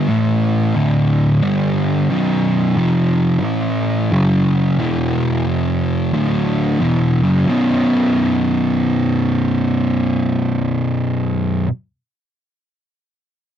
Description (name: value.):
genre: metal.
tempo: 89 BPM.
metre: 4/4.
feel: swing 63% on 8ths.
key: B minor.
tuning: A4 = 440 Hz.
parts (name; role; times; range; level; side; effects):
fuzz guitar; solo; 0.0-11.7 s; B1 to A3; -14 LUFS; equal; distortion.
room: light reverb.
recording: dry, close 1970s-style studio recording.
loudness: -14 LUFS.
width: side -9 dB against mid.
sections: 0.0-2.1 A section; 2.1-7.5 B section; 7.5-10.2 C section.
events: none.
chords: 0.1 A5; 0.8 D5; 1.4 G5; 2.1 B5; 2.8 F5; 3.4 A5; 4.1 F#5; 4.8 E5; 5.5 F5; 6.1 D5; 6.8 B5.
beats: 0.09 0.76 1.43 | 2.10 2.77 3.45 4.12 | 4.79 5.46 6.14 6.81 | 7.48 8.15 8.83 9.50.